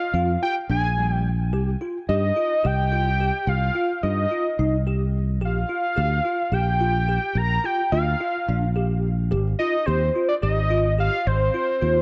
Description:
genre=progressive instrumental, band music in an uneven meter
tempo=216 BPM (eighths)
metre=7/8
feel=straight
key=C minor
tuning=A4 = 441 Hz
part: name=fat analog lead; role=melody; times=0.0-12.0 s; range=C5 to Bb5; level=-26 LUFS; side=equal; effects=plate reverb, tape echo
part: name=bell-like tine electric piano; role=arpeggios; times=0.0-12.0 s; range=G3 to G4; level=-32 LUFS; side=equal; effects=ensemble chorus, plate reverb
part: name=fingered electric bass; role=bass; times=0.1-12.0 s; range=Ab1 to G2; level=-25 LUFS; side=equal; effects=none
room=light reverb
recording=worn, warbling old tape, cassette tape, warbly pitch drift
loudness=-23 LUFS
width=mono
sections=0.0-12.0 A section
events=none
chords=0.0 Bb7(no3); 1.5 Cm; 5.4 Gm7/Bb; 9.3 Ab6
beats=0.14 0.42 0.70 0.98 1.25 | 1.53 1.81 2.09 2.36 2.64 2.92 3.20 | 3.47 3.75 4.03 4.31 4.58 4.86 5.14 | 5.42 5.70 5.97 6.25 6.53 6.81 7.08 | 7.36 7.64 7.92 8.20 8.47 8.75 9.03 | 9.31 9.59 9.87 10.14 10.42 10.70 10.98 | 11.26 11.54 11.81

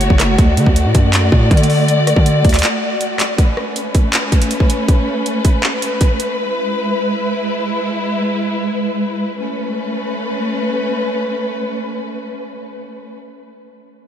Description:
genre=hip hop, trap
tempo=160 BPM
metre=4/4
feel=half-time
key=A major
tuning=A4 = 444 Hz
part: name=dark symphonic string section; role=sustained chords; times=0.0-13.1 s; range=G#3 to D5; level=-18 LUFS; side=left 1 dB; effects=none
part: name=distorted 808-style bass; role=bass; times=0.0-2.6 s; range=F#1 to D3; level=-14 LUFS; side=equal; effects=distortion
part: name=trap drum kit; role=drums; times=0.0-6.3 s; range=handclaps, hi-hat, kick drum, rim click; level=-15 LUFS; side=equal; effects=none
room=wet huge ambient reverb, RT60 4.2 s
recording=dreamy mix soaked in reverb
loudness=-14 LUFS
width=side -9 dB against mid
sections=0.0-3.4 A section; 3.4-9.4 B section; 9.4-12.4 C section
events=break 2.6-3.4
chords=0.4 D; 3.4 Aadd9; 6.4 E; 9.4 Aadd9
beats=0.01 | 0.38 0.76 1.13 1.51 | 1.88 2.26 2.63 3.01 | 3.38 3.76 4.13 4.51 | 4.88 5.26 5.63 6.01 | 6.38 6.76 7.13 7.51 | 7.88 8.26 8.63 9.01 | 9.38 9.76 10.13 10.51 | 10.88 11.26 11.63 12.01

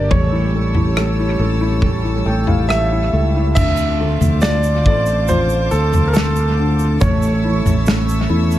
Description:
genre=pop ballad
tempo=70 BPM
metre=4/4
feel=straight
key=D harmonic minor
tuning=A4 = 441 Hz
part: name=clear concert grand piano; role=melody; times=0.0-7.8 s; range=A4 to E5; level=-22 LUFS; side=right 1 dB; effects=analog delay
part: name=felt-muted upright piano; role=accompaniment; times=0.0-8.6 s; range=D3 to G5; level=-23 LUFS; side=left 4 dB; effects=analog delay
part: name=rich studio string section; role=sustained chords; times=0.0-8.6 s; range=F4 to E6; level=-28 LUFS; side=equal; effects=none
part: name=fingerpicked steel-string acoustic guitar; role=arpeggios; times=0.0-8.6 s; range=A2 to A4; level=-26 LUFS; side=right 5 dB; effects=analog delay
part: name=fingered electric bass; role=bass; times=0.0-8.6 s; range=A1 to E2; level=-17 LUFS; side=equal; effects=none
part: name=natural country drum kit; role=drums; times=0.1-8.1 s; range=crash cymbal, kick drum, rim click, snare drum, toms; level=-19 LUFS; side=equal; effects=analog delay
part: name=egg shaker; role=percussion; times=3.6-8.6 s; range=none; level=-36 LUFS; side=right 8 dB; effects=analog delay
room=small room ambience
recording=echo-heavy mix, lossy compression artefacts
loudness=-14 LUFS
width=side -13 dB against mid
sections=0.0-3.6 A section; 3.6-8.6 B section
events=felt piano fill 1.8-3.6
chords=0.1 A7; 3.6 Dm7; 7.0 A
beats=| 0.12 0.97 1.83 2.70 | 3.57 4.43 5.29 6.15 | 7.01 7.87

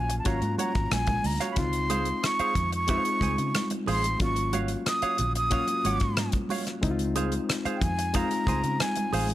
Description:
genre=lush 1970s-style soul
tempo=91 BPM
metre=4/4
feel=straight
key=Db major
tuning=A4 = 440 Hz
part: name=breathy concert flute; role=melody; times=0.0-9.3 s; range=G5 to Eb6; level=-29 LUFS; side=right 1 dB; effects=none
part: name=barky reed electric piano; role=accompaniment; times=0.0-9.3 s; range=Gb3 to F4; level=-32 LUFS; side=left 4 dB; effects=overdrive
part: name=vintage muted fingered electric bass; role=bass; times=0.0-9.3 s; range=Ab1 to Db3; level=-30 LUFS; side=equal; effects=none
part: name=semi-hollow electric guitar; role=riff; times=0.1-9.3 s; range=Gb4 to Ab5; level=-35 LUFS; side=right 6 dB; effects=spring reverb
part: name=damped 70s drum kit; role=drums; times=0.1-9.3 s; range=hi-hat, kick drum, rim click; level=-30 LUFS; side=equal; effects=none
part: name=congas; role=percussion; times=0.3-9.3 s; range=none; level=-36 LUFS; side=right 5 dB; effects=none
room=small room ambience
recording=none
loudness=-24 LUFS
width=side -14 dB against mid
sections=0.0-9.3 A section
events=none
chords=0.0 Ab13sus4; 1.6 Dbmaj7; 4.2 Ab13sus4; 6.8 Dbmaj7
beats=0.26 0.91 | 1.57 2.23 2.89 3.54 | 4.20 4.86 5.52 6.17 | 6.83 7.49 8.15 8.81

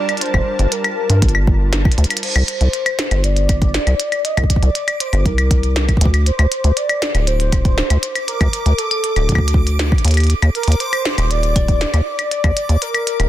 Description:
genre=IDM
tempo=119 BPM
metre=4/4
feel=straight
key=unclear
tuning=A4 = 440 Hz
part: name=warm velvety synth lead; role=melody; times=0.0-13.3 s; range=A4 to Eb5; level=-22 LUFS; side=left 1 dB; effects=chorus, dub echo
part: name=warm analog pad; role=sustained chords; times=0.0-2.2 s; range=G3 to A5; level=-26 LUFS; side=right 1 dB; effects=chorus, sidechain pumping
part: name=glitchy drum kit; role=drums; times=0.1-13.3 s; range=claves, crash cymbal, hi-hat, snare drum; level=-21 LUFS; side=left 1 dB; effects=soft clipping on snare
part: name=deep acid bass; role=bass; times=0.3-13.3 s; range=D1 to G2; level=-15 LUFS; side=equal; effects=tube saturation
part: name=electronic kick drum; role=drums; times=0.3-12.5 s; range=none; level=-16 LUFS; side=equal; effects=none
part: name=backwards swelling texture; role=texture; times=2.7-13.3 s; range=D6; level=-29 LUFS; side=right 2 dB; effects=built-in reverb, sidechain pumping
room=digital ambience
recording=dense, heavily limited modern master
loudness=-14 LUFS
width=side -13 dB against mid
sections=0.0-2.2 A section; 2.2-13.3 A section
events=drum fill 2.0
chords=0.0 Gm9; 2.2 C5; 6.3 D5; 10.3 Ebmaj7(no3)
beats=| 0.21 0.72 1.22 1.73 | 2.23 2.73 3.24 3.74 | 4.25 4.75 5.26 5.76 | 6.26 6.77 7.27 7.78 | 8.28 8.79 9.29 9.79 | 10.30 10.80 11.31 11.81 | 12.31 12.82

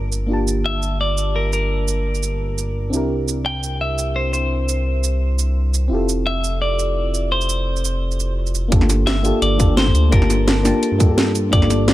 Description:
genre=liquid drum and bass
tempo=171 BPM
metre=4/4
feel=straight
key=G dorian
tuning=A4 = 441 Hz
part: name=clean electric guitar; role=melody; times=0.0-11.9 s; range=Bb4 to G5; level=-24 LUFS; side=equal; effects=dub echo
part: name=mellow FM electric piano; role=accompaniment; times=0.0-11.9 s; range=Bb3 to A5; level=-23 LUFS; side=left 1 dB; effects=chorus, digital delay
part: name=smooth synth bass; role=bass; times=0.0-11.9 s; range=F1 to G2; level=-20 LUFS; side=equal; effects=none
part: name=garage drum kit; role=drums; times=0.1-11.9 s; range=cabasa, hi-hat, snare drum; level=-22 LUFS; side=right 1 dB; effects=small room ambience
part: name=electronic kick drum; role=drums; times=8.7-11.6 s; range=none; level=-16 LUFS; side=equal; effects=small room ambience
room=little or no reverb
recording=none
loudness=-16 LUFS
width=side -15 dB against mid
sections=0.0-8.7 A section; 8.7-11.9 B section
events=drop 8.7-11.9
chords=0.0 Gm9; 2.9 C9; 5.9 Fmaj9; 8.7 Gm9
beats=| 0.30 0.65 1.00 1.35 | 1.70 2.05 2.40 2.76 | 3.11 3.46 3.81 4.16 | 4.51 4.86 5.21 5.56 | 5.91 6.26 6.62 6.97 | 7.32 7.67 8.02 8.37 | 8.72 9.07 9.42 9.77 | 10.12 10.47 10.83 11.18 | 11.53 11.88

